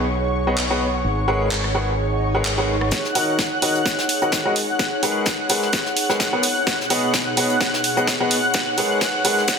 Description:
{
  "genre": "piano house",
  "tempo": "128 BPM",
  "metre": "4/4",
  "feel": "swing 55% on 16ths",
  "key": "G# minor",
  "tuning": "A4 = 441 Hz",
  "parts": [
    { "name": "analog string pad", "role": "sustained chords", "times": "0.0-9.6 s", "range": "C#5 to F#6", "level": "-24 LUFS", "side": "equal", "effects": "ensemble chorus, sidechain pumping" },
    { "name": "clear upright piano", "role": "riff", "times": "0.0-9.4 s", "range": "D#3 to F#5", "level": "-23 LUFS", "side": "left 1 dB", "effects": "sidechain pumping, low-pass filter, tape echo" },
    { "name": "fingered electric bass", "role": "bass", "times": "0.0-2.9 s", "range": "G#1 to B1", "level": "-24 LUFS", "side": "equal", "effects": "sidechain pumping, low-pass filter" },
    { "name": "warbly tape-like pad", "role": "texture", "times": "0.0-9.6 s", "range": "B2 to F#5", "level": "-27 LUFS", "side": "equal", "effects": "chorus, built-in reverb, sidechain pumping" },
    { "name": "house drum kit", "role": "drums", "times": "0.6-9.6 s", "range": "handclaps, hi-hat, rim click, snare drum", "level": "-24 LUFS", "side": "right 1 dB", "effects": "high-pass filter on hats, soft clipping on snare, high-pass filter on snare, high-pass filter on cymbals, high-pass filter on room" },
    { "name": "swell", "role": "sound effects", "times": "2.1-2.9 s", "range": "none", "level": "-34 LUFS", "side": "right 2 dB", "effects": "none" },
    { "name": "electronic kick drum", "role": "drums", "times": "2.9-9.6 s", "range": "none", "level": "-28 LUFS", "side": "equal", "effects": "high-pass filter on kick, high-pass filter on room" },
    { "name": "soft brush drum kit", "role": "drums", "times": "2.9-9.6 s", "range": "hi-hat, snare drum", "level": "-28 LUFS", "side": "left 4 dB", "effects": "high-pass filter on hats, soft clipping on snare, high-pass filter on snare, high-pass filter on room" }
  ],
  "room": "moderate lush hall reverb, RT60 2.0 s",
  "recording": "dense, heavily limited modern master, high-pass filter",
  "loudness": "-18 LUFS",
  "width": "side -6 dB against mid",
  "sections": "0.0-2.9 A section; 2.9-9.6 B section",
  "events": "swell 2.1-2.9; build-up 2.9-9.6; drum fill 2.9-9.6; filter sweep on upright piano 2.9-9.6",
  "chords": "0.0 B69; 1.0 G#m11; 2.9 D#m7; 4.6 G#m11; 6.4 B69; 8.5 G#m11"
}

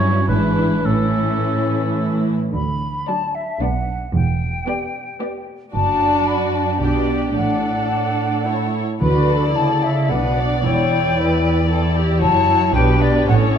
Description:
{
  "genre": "quick classical-period movement for symphony orchestra",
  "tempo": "111 BPM",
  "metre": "3/4",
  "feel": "rubato",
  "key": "D major",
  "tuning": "A4 = 440 Hz",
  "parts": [
    { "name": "muted chamber violin section", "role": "melody", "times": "0.0-13.6 s", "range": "E4 to D5", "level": "-27 LUFS", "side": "left 6 dB", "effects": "none" },
    { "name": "muted chamber violin section", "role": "second line", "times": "0.0-13.6 s", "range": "C#4 to D5", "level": "-26 LUFS", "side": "left 3 dB", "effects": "none" },
    { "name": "warm oboe", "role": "second line", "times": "0.0-2.3 s", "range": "A4 to C#5", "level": "-24 LUFS", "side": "right 2 dB", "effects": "none" },
    { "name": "muted chamber viola section", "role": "accompaniment", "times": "0.0-13.6 s", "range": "E3 to F#4", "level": "-24 LUFS", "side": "right 1 dB", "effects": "none" },
    { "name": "muted studio cello section", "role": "bass", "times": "0.0-13.6 s", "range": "E2 to D3", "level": "-21 LUFS", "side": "right 2 dB", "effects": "none" },
    { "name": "muted chamber double bass section", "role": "bass", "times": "0.3-13.6 s", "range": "E1 to D2", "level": "-23 LUFS", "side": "right 3 dB", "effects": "none" },
    { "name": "concert flute", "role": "second line", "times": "2.5-13.6 s", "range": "D5 to B5", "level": "-22 LUFS", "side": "left 3 dB", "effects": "none" },
    { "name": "timpani", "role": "percussion", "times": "9.0-9.8 s", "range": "D3", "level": "-25 LUFS", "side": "equal", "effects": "none" }
  ],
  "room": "wet recital hall reverb, RT60 1.7 s",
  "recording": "dark, warm production",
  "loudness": "-16 LUFS",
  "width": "side -8 dB against mid",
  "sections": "0.0-2.5 A section; 2.5-13.6 B section",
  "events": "none",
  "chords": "0.3 E7/G#; 0.9 A; 2.5 D; 3.6 Bm; 4.1 Em7; 5.7 D/F#; 6.8 G/B; 7.4 D/A; 8.5 A; 9.0 D; 10.1 Bm; 10.6 Em7; 12.2 F#m7; 12.7 G/B"
}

